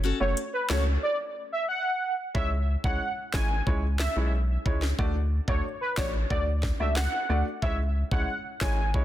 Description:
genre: dancehall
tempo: 91 BPM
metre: 4/4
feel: straight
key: C# phrygian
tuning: A4 = 440 Hz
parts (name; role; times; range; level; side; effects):
- picked steel-string acoustic guitar; arpeggios; 0.0-0.8 s; C#4 to A4; -34 LUFS; left 7 dB; tape echo
- warm sub bass; bass; 0.0-9.0 s; F#1 to D2; -27 LUFS; equal; none
- warm velvety synth lead; melody; 0.2-8.9 s; B4 to G#5; -30 LUFS; right 1 dB; chorus, tape echo
- warm baby grand piano; accompaniment; 0.2-9.0 s; G#3 to D5; -34 LUFS; right 1 dB; none
- island pop drum kit; drums; 0.4-9.0 s; handclaps, hi-hat, kick drum, snare drum; -30 LUFS; equal; none
room: little or no reverb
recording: dense, heavily limited modern master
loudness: -25 LUFS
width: side -13 dB against mid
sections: 0.0-2.3 A section; 2.3-9.0 B section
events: break 1.0-2.3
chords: 0.0 F#m; 2.3 C#m; 5.0 D; 7.6 C#m

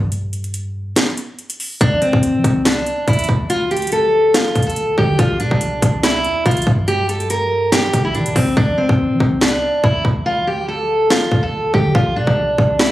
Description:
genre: hip hop, trap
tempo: 142 BPM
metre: 4/4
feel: half-time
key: D minor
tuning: A4 = 440 Hz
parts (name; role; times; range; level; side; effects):
- warm 808-style bass; bass; 0.0-12.9 s; Bb1 to F3; -22 LUFS; equal; none
- trap drum kit; drums; 0.1-12.9 s; hi-hat, kick drum, snare drum; -17 LUFS; equal; overdrive
- picked steel-string acoustic guitar; melody; 1.8-12.9 s; C4 to Bb4; -17 LUFS; equal; low-pass filter, tape echo
room: light reverb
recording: recorded on a phone in the room, club reverb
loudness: -14 LUFS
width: side -15 dB against mid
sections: 0.0-12.9 A section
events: break 0.0-1.8; kick muted 1.0-1.8; hi-hats muted 8.6-12.9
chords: 0.0 N.C.; 1.8 D5; 5.2 C5; 8.6 D5; 11.9 C5

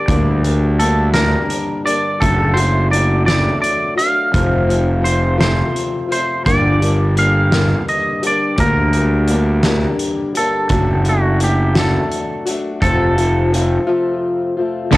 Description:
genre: quiet-loud alternative rock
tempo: 56 BPM (dotted quarters)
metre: 6/8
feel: straight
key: G minor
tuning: A4 = 442 Hz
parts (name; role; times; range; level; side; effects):
- twangy electric guitar; melody; 0.0-15.0 s; F#4 to F5; -19 LUFS; right 1 dB; cassette tape
- fingerpicked old ladder-braced acoustic guitar; arpeggios; 0.0-14.9 s; F2 to G4; -20 LUFS; left 2 dB; cassette tape, tape echo
- fuzz fingered electric bass; bass; 0.1-15.0 s; F1 to D2; -16 LUFS; equal; overdrive
- loose indie drum kit; drums; 0.1-15.0 s; crash cymbal, hi-hat, kick drum, snare drum; -22 LUFS; equal; cassette tape
- fuzz guitar; riff; 14.9-15.0 s; D3 to F3; -13 LUFS; right 8 dB; distortion, cassette tape
- thick fuzz guitar; riff; 14.9-15.0 s; D3 to D4; -14 LUFS; left 5 dB; distortion, cassette tape
room: light reverb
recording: home recording on cassette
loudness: -13 LUFS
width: side -18 dB against mid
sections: 0.0-14.9 A section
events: break 13.9-14.9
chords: 0.0 Gm; 2.2 D/F#; 4.3 F; 6.5 Gm; 10.7 D/F#; 12.8 F

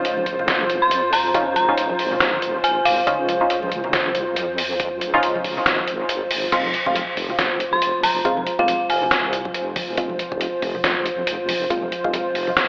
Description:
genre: deep dubstep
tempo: 139 BPM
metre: 4/4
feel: swing 58% on 16ths, half-time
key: F minor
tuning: A4 = 442 Hz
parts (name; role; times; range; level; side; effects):
- dark analog pad; sustained chords; 0.0-12.7 s; F4 to C5; -24 LUFS; equal; chorus
- filtered dub chord stab; stabs; 0.0-12.7 s; Ab3 to F4; -24 LUFS; equal; chorus, dub echo
- deep soft wobble bass; bass; 0.0-12.7 s; F1 to F2; -31 LUFS; equal; chorus
- trip hop sampler-style drum kit; drums; 0.0-12.7 s; crash cymbal, hi-hat, snare drum; -22 LUFS; equal; none
- congas; percussion; 0.2-12.6 s; none; -37 LUFS; equal; dub echo
- electronic kick drum; drums; 0.3-12.1 s; none; -33 LUFS; equal; none
- dark detuned synth bell; melody; 0.8-3.5, 7.7-9.2 s; F5 to C6; -20 LUFS; equal; chorus, dub echo
room: moderate lush hall reverb, RT60 2.5 s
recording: vinyl crackle, telephone sound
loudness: -18 LUFS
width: side -33 dB against mid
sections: 0.0-6.5 A section; 6.5-12.7 A section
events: drop 0.0-6.5, 6.5-12.7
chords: 0.0 Dbadd9; 6.5 Fm

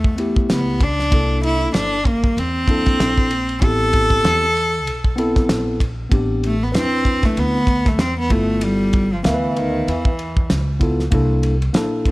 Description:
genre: hip hop, jazz-hop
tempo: 96 BPM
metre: 4/4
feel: swing 57% on 16ths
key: A minor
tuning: A4 = 439 Hz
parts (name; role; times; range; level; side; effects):
- warm cello; melody; 0.0-12.1 s; D#3 to A4; -20 LUFS; equal; none
- upright bass; bass; 0.0-12.1 s; G1 to E2; -23 LUFS; equal; none
- cloth-damped thuddy drum kit; drums; 0.0-12.1 s; hi-hat, kick drum, ride cymbal, snare drum; -19 LUFS; equal; none
- mellow tine electric piano; accompaniment; 0.2-12.1 s; A3 to F5; -22 LUFS; left 1 dB; none
room: small room ambience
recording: none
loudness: -16 LUFS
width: side -20 dB against mid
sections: 0.0-6.1 A section; 6.1-12.1 B section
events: cello solo 6.1-12.1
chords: 0.0 G69; 1.1 C13; 3.6 Am9; 6.1 Am11; 8.3 G13; 11.1 C13

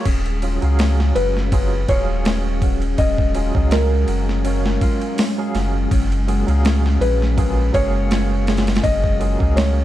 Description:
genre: trip hop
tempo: 82 BPM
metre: 4/4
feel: swing 55% on 16ths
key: Eb minor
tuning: A4 = 440 Hz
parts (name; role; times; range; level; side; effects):
- barky tine electric piano; accompaniment; 0.0-9.8 s; Bb2 to F5; -28 LUFS; right 2 dB; fast stereo tremolo, tape echo
- string machine, cellos; sustained chords; 0.1-9.8 s; Ab3 to Ab4; -28 LUFS; right 1 dB; ensemble chorus, vintage 12-bit sampler grit
- concert harp; arpeggios; 0.1-9.8 s; Db4 to Ab4; -29 LUFS; left 7 dB; digital delay
- warm sub bass; bass; 0.1-9.8 s; Eb1 to Db2; -19 LUFS; equal; none
- dusty soul sampler-style drum kit; drums; 0.1-9.8 s; crash cymbal, hi-hat, kick drum, ride cymbal, snare drum; -21 LUFS; equal; overdrive
- felt-muted upright piano; melody; 1.2-9.8 s; Bb4 to Eb5; -24 LUFS; equal; tape echo
room: digital ambience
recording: dark, warm production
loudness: -16 LUFS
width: side -14 dB against mid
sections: 0.1-9.8 A section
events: none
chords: 0.1 Ebm11; 5.9 Gbmaj9

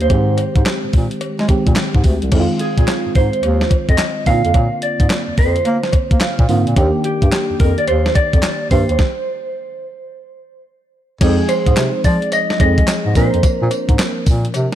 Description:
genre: R&B, new jack swing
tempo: 108 BPM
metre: 4/4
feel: swing 64% on 16ths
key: F dorian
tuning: A4 = 439 Hz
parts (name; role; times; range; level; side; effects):
- mellow electric guitar; melody; 0.0-14.2 s; G4 to F5; -20 LUFS; right 1 dB; tremolo
- mellow FM electric piano; accompaniment; 0.0-14.8 s; D3 to F5; -21 LUFS; right 1 dB; chorus
- mellow bass clarinet; bass; 0.0-14.7 s; C2 to Bb3; -18 LUFS; equal; none
- crisp 8-bit digital drum machine; drums; 0.0-14.8 s; crash cymbal, handclaps, hi-hat, kick drum, snare drum, tambourine; -16 LUFS; equal; none
- cowbell; percussion; 0.1-14.7 s; none; -32 LUFS; left 10 dB; none
room: light reverb, digital ambience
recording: dark, warm production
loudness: -13 LUFS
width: side -11 dB against mid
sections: 0.0-2.3 A section; 2.3-11.2 B section; 11.2-14.8 C section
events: FM electric piano fill 5.9-6.8; stop 9.0-11.2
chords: 0.1 Abmaj7; 2.3 Fm7; 4.3 Bbadd9; 6.8 Ebmaj7; 9.0 N.C.; 11.2 Fm7; 13.2 Bbadd9

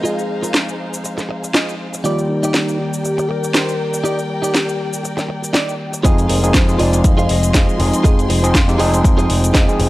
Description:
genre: nu-disco, nu disco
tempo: 120 BPM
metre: 4/4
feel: swing 55% on 16ths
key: F dorian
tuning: A4 = 439 Hz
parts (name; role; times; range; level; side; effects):
- soft octave-layered synth lead; melody; 0.0-8.6 s; Eb4 to Eb5; -24 LUFS; left 1 dB; chorus, phaser, tape echo
- overdriven tine electric piano; accompaniment; 0.0-9.9 s; Eb3 to D5; -20 LUFS; equal; sidechain pumping
- warm studio violin section; sustained chords; 0.0-9.9 s; Eb4 to C6; -28 LUFS; left 2 dB; sidechain pumping
- direct-recorded clean electric guitar; riff; 0.0-9.8 s; Eb4 to F5; -24 LUFS; right 3 dB; wide subtle chorus
- house drum kit; drums; 0.1-9.9 s; cabasa, hi-hat, snare drum; -20 LUFS; equal; overdrive
- picked electric bass with an envelope filter; bass; 6.0-9.9 s; F1 to F2; -18 LUFS; equal; tube saturation, sidechain pumping
- electronic kick drum; drums; 6.0-9.7 s; none; -14 LUFS; equal; overdrive
room: little or no reverb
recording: dry, gritty hardware recording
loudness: -14 LUFS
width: side -17 dB against mid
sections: 0.0-6.0 A section; 6.0-9.9 B section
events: filter sweep on tine electric piano 0.0-6.0; drop 6.0-9.9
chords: 0.0 Fm7; 2.0 Ebmaj7; 6.0 Fm7

